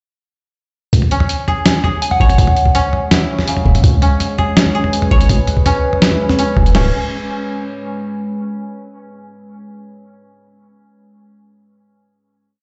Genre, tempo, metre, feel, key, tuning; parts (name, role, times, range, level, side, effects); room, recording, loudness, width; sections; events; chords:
half-time drum and bass; 165 BPM; 4/4; half-time; C# minor; A4 = 440 Hz
deep dark ambient pad; sustained chords; 1.9-8.2 s; G#3 to G#5; -24 LUFS; equal; chorus, built-in reverb, sidechain pumping
long sustained 808-style bass; bass; 0.9-6.9 s; C#1 to C#2; -15 LUFS; equal
boom bap sampler-style drum kit; drums; 0.9-6.8 s; crash cymbal, kick drum, snare drum, toms; -18 LUFS; equal
boom bap sampler-style drum kit; drums; 0.9-6.7 s; hi-hat, snare drum, toms; -18 LUFS; equal
koto; arpeggios; 1.1-6.9 s; C#3 to C#5; -23 LUFS; equal; dub echo
soft synth bell; melody; 2.0-2.6 s; F#5 to G#5; -23 LUFS; equal; chorus, phaser, dub echo
moderate echo chamber reverb, RT60 1.4 s; played on a big sound system in a bare room, large studio reverb, nothing above 7.9 kHz; -15 LUFS; mono
0.9-6.7 drop; 6.7-8.2 final chord
drop 0.9-6.7
0.9 C#5